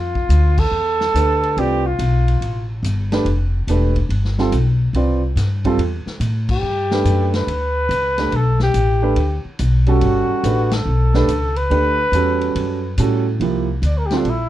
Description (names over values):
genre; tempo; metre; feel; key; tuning
modal jazz; 142 BPM; 4/4; swing 66% on 8ths; unclear; A4 = 442 Hz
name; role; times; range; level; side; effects
dark trumpet; melody; 0.0-2.7, 6.5-14.5 s; D4 to D5; -20 LUFS; equal; none
upright bass; bass; 0.0-14.5 s; E1 to A2; -18 LUFS; equal; none
vintage drum kit; drums; 0.2-14.4 s; crash cymbal, hi-hat, kick drum, ride cymbal, snare drum; -29 LUFS; left 2 dB; none
warm concert grand piano; accompaniment; 1.1-14.3 s; F3 to D5; -20 LUFS; right 4 dB; none
room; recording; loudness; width
light reverb; dark, warm production; -15 LUFS; side -13 dB against mid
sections
0.0-13.4 A section; 13.4-14.5 B section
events
band accent 0.5, 6.4, 10.7; trumpet solo 13.4-14.5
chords
0.0 Fmaj9; 6.6 Gmaj9; 13.4 C9sus4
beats
0.30 0.72 1.14 | 1.57 1.99 2.41 2.83 | 3.25 3.68 4.10 4.52 | 4.95 5.37 5.79 6.21 | 6.63 7.06 7.48 7.90 | 8.33 8.75 9.17 9.60 | 10.02 10.44 10.87 11.29 | 11.71 12.13 12.56 12.98 | 13.41 13.83 14.26